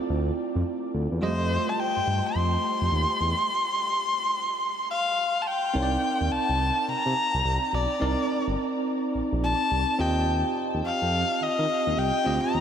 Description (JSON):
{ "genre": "R&B, new jack swing", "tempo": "106 BPM", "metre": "4/4", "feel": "swing 63% on 16ths", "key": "C dorian", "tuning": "A4 = 440 Hz", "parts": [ { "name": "bell-like tine electric piano", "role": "accompaniment", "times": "0.0-12.6 s", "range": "G3 to Eb5", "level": "-30 LUFS", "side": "right 2 dB", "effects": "fast stereo tremolo" }, { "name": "smooth synth bass", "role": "bass", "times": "0.1-12.6 s", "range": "G1 to Eb3", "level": "-27 LUFS", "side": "equal", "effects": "none" }, { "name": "warm erhu", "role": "melody", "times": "1.2-12.6 s", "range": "C5 to C6", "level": "-26 LUFS", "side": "left 2 dB", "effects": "none" } ], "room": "wet huge ambient reverb, RT60 8.3 s", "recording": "dreamy mix soaked in reverb", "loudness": "-23 LUFS", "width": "side -8 dB against mid", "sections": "0.0-5.7 A section; 5.7-12.6 B section", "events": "none", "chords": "0.0 Dm7; 1.2 F9; 5.7 Cm9; 10.0 Eb69", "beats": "0.08 0.65 | 1.22 1.78 2.35 2.91 | 3.48 4.04 4.61 5.18 | 5.74 6.31 6.88 7.44 | 8.01 8.57 9.14 9.71 | 10.27 10.84 11.40 11.97 | 12.54" }